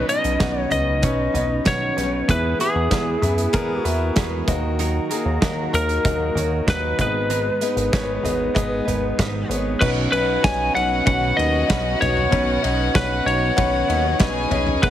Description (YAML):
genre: piano-driven pop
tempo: 96 BPM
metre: 4/4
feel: straight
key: B major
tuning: A4 = 439 Hz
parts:
  - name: lightly driven lead guitar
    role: melody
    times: 0.0-14.9 s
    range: G#4 to G#5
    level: -23 LUFS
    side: left 1 dB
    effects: none
  - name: clear grand piano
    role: accompaniment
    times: 0.0-14.9 s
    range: G#2 to F#5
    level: -26 LUFS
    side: left 3 dB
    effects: none
  - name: sweeping resonant pad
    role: sustained chords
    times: 0.0-14.9 s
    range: D#3 to A#5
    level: -31 LUFS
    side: right 1 dB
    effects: wide subtle chorus
  - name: direct-recorded clean electric guitar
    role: riff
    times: 0.0-14.9 s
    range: G#2 to B4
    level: -29 LUFS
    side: right 8 dB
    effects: warbly pitch drift
  - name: chorused synth bass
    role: bass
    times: 0.0-14.9 s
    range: G#1 to F#2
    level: -25 LUFS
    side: equal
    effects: none
  - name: loose indie drum kit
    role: drums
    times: 0.1-14.9 s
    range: crash cymbal, hi-hat, kick drum, ride cymbal, snare drum, toms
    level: -24 LUFS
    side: equal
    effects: none
  - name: warm studio violin section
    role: second line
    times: 9.8-14.9 s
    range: F#4 to A#5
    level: -27 LUFS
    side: left 4 dB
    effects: none
room: light reverb, small room ambience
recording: heavily compressed radio sound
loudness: -18 LUFS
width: side -11 dB against mid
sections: 0.0-9.8 A section; 9.8-14.9 B section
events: none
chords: 0.0 Badd9; 2.3 E; 4.5 D#m; 7.0 G#m; 9.8 Badd9